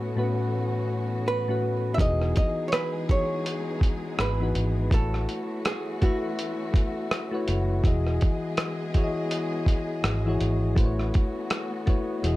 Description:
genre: lo-fi hip hop.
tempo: 82 BPM.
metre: 4/4.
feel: swing 62% on 16ths.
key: unclear.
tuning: A4 = 440 Hz.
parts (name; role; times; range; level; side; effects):
soft electric-piano-like synth keys; accompaniment; 0.0-12.4 s; A2 to E5; -28 LUFS; left 2 dB; chorus, cassette tape.
warm studio string section; sustained chords; 0.0-12.4 s; E3 to D#5; -38 LUFS; right 1 dB; none.
archtop guitar, miked and amplified; melody; 1.3-7.4 s; F#4 to E5; -31 LUFS; right 2 dB; tape echo.
vintage muted fingered electric bass; bass; 2.0-12.4 s; E1 to A1; -26 LUFS; equal; none.
lo-fi sampler-style drum kit; drums; 2.0-12.4 s; hi-hat, kick drum, rim click; -24 LUFS; equal; none.
room: light reverb.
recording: none.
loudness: -24 LUFS.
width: side -17 dB against mid.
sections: 0.0-12.4 A section.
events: none.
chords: 0.0 A69; 2.0 Emaj7; 4.9 A69; 7.8 Emaj7; 10.8 A69.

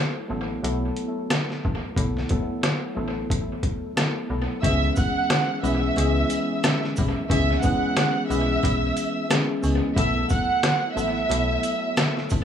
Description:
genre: hip hop, boom-bap hip-hop.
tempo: 90 BPM.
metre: 4/4.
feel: swing 60% on 16ths.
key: C# minor.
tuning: A4 = 440 Hz.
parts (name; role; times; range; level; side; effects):
mellow tine electric piano; accompaniment; 0.0-12.4 s; E3 to A4; -26 LUFS; left 2 dB; medium stereo tremolo, high-pass filter, low-pass filter, analog delay.
metallic FM bass; bass; 0.3-12.4 s; A1 to C#2; -26 LUFS; equal; none.
trip hop sampler-style drum kit; drums; 0.6-12.4 s; hi-hat, kick drum, rim click, shaker, snare drum; -25 LUFS; equal; analog delay.
warm studio violin section; melody; 4.6-12.1 s; E5 to F#6; -26 LUFS; right 3 dB; high-pass filter, low-pass filter, analog delay.
sleigh bells; percussion; 4.6-12.4 s; none; -42 LUFS; right 9 dB; none.
room: light reverb.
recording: echo-heavy mix, small room ambience.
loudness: -21 LUFS.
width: side -8 dB against mid.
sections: 0.0-4.6 A section; 4.6-12.4 B section.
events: none.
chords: 0.0 B7sus4; 4.6 C#m7; 10.0 B7sus4.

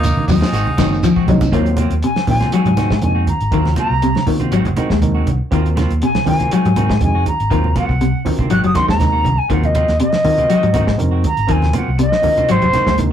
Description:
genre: afrobeat.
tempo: 120 BPM.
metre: 4/4.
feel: swing 54% on 16ths.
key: Eb dorian.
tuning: A4 = 438 Hz.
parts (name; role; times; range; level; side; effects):
bright tenor saxophone; melody; 0.0-1.2 s; Eb4; -23 LUFS; equal; none.
warm trumpet; second line; 0.0-1.2 s; Ab3 to Bb3; -29 LUFS; right 2 dB; none.
overdriven reed electric piano; accompaniment; 0.0-13.1 s; Gb3 to Bb4; -25 LUFS; equal; none.
clean electric guitar; stabs; 0.0-12.9 s; Eb3 to Gb4; -26 LUFS; right 3 dB; none.
fingered electric bass; bass; 0.0-13.1 s; Gb1 to Eb3; -18 LUFS; equal; none.
cloth-damped thuddy drum kit; drums; 0.0-13.1 s; hi-hat, kick drum, snare drum; -23 LUFS; right 1 dB; none.
congas; percussion; 0.0-13.1 s; none; -21 LUFS; right 2 dB; none.
shekere; percussion; 0.0-1.5 s; none; -25 LUFS; right 4 dB; none.
semi-hollow electric guitar; arpeggios; 0.3-13.1 s; C3 to Ab3; -18 LUFS; left 3 dB; none.
silver concert flute; melody; 2.0-13.0 s; C5 to Gb6; -18 LUFS; equal; none.
room: wet small room reverb, RT60 0.5 s.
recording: rough rehearsal-room recording, warm saturation.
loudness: -13 LUFS.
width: side -9 dB against mid.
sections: 0.0-1.5 A section; 1.5-13.1 B section.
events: drum fill 0.8-1.5; flute solo 1.5-13.1.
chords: 0.0 Ebm69; 0.5 Ab7; 1.5 Ebm69; 2.5 Ab7; 3.5 Ebm69; 4.5 Ab7; 5.5 Ebm69; 6.5 Ab7; 7.5 Ebm69; 8.5 Ab7; 9.5 Ebm69; 10.5 Ab7; 11.5 Ebm69; 12.5 Ab7.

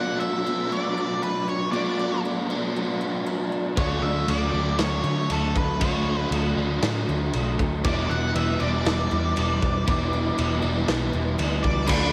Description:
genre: rock, shoegaze and dream pop.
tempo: 118 BPM.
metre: 4/4.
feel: straight.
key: unclear.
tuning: A4 = 440 Hz.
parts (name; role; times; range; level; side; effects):
octave-fuzz lead guitar; melody; 0.0-12.1 s; A4 to F#5; -32 LUFS; equal; distortion, tape echo.
picked twelve-string acoustic guitar; arpeggios; 0.0-12.1 s; E3 to D4; -37 LUFS; equal; ensemble chorus, tape echo.
electric guitar through a small old amp; riff; 0.0-12.1 s; E2 to F#4; -32 LUFS; equal; reverse reverb.
overdriven semi-hollow guitar; riff; 0.0-12.1 s; B2 to E4; -31 LUFS; equal; ensemble chorus.
vintage muted picked electric bass; bass; 3.8-12.1 s; E1 to D3; -29 LUFS; equal; none.
loose indie drum kit; drums; 3.8-12.0 s; crash cymbal, kick drum, snare drum; -31 LUFS; equal; none.
overdriven electric guitar; riff; 11.9-12.1 s; D3 to D4; -30 LUFS; equal; none.
tambourine; percussion; 11.9-12.0 s; none; -40 LUFS; equal; none.
room: wet lush hall reverb, RT60 1.7 s, small room ambience.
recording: dreamy mix soaked in reverb.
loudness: -24 LUFS.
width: mono.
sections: 0.0-11.9 A section.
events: none.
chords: 0.0 Bm7; 7.8 Em7.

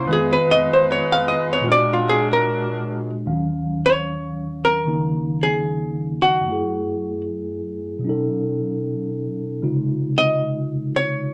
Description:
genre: jazz ballad.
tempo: 76 BPM.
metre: 4/4.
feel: swing 69% on 8ths.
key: Eb minor.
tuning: A4 = 445 Hz.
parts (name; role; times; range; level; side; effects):
mellow tine electric piano; accompaniment; 0.0-11.3 s; Eb2 to F5; -25 LUFS; equal; none.
mellow saxophone section; sustained chords; 0.0-3.2 s; Gb3 to Cb5; -27 LUFS; equal; none.
archtop guitar, miked and amplified; melody; 0.1-11.3 s; F4 to F5; -21 LUFS; equal; none.
room: moderate studio reverb, RT60 0.5 s.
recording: none.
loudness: -21 LUFS.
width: mono.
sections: 0.0-3.3 A section; 3.3-11.3 B section.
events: hollow-body jazz guitar solo 0.0-3.3.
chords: 0.1 Fm7b5; 1.7 Bb7b13; 3.3 Ebm9; 6.4 Gbm7; 8.0 B9; 9.6 Dbmaj9.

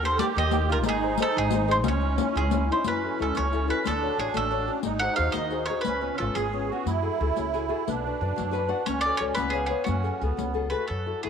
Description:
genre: italian folk, Italian serenade.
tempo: 120 BPM (dotted quarters).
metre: 6/8.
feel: rubato.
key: F# minor.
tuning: A4 = 440 Hz.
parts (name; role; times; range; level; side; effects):
bowl-back mandolin; melody; 0.0-6.8, 8.9-11.3 s; F#4 to F#5; -28 LUFS; right 2 dB; none.
musette accordion; second line; 0.0-10.9 s; A3 to A4; -30 LUFS; right 10 dB; none.
nylon-string guitar; accompaniment; 0.0-11.3 s; C#3 to F#5; -30 LUFS; left 10 dB; none.
upright bass; bass; 0.0-11.3 s; G#1 to F#2; -30 LUFS; equal; none.
riq; percussion; 0.2-10.8 s; none; -32 LUFS; left 13 dB; none.
room: wet spring reverb, RT60 2.1 s.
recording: 1960s-style stereo with parts hard left and right.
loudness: -24 LUFS.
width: side -7 dB against mid.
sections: 0.0-2.9 A section; 2.9-10.9 B section.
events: nylon-string guitar fill 8.4-8.9.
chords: 0.0 D#; 0.9 G#; 1.8 C#madd9; 2.9 F#m7; 3.9 Dmaj7; 4.8 G#7; 5.8 C#7; 6.9 F#madd9; 7.9 Bm; 8.9 F#m/C#; 9.4 C#7; 9.9 F#madd9.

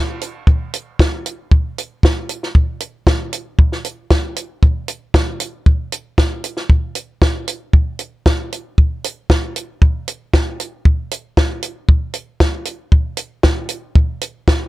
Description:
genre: rock.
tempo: 116 BPM.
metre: 4/4.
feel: straight.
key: none.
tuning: none.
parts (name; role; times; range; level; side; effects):
compact cocktail drum kit; drums; 0.2-14.6 s; hi-hat, kick drum, snare drum; -13 LUFS; equal; none.
room: little or no reverb.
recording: dark, warm production.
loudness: -15 LUFS.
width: side -18 dB against mid.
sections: 0.0-14.7 A section.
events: none.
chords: none.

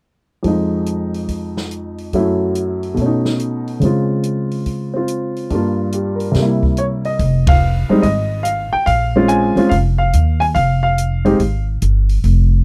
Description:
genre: jazz piano trio.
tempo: 142 BPM.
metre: 4/4.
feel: swing 66% on 8ths.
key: F minor.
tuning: A4 = 440 Hz.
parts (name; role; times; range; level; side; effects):
warm baby grand piano; melody; 0.4-11.6 s; F2 to Ab5; -18 LUFS; equal; none.
open jazz drum kit; drums; 0.4-12.4 s; hi-hat, kick drum, ride cymbal, snare drum; -22 LUFS; equal; none.
upright bass; bass; 7.2-12.6 s; F1 to Eb2; -18 LUFS; equal; none.
room: little or no reverb.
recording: dry, close 1970s-style studio recording.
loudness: -17 LUFS.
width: mono.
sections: 0.4-7.2 A section; 7.2-12.6 B section.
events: band accent 7.4.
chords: 0.4 Fm7; 2.1 Gbm7; 3.0 B9; 3.8 Dbmaj7; 5.5 Gm7; 6.4 C7; 7.2 Fm7; 8.9 Bbm7; 10.6 Fm.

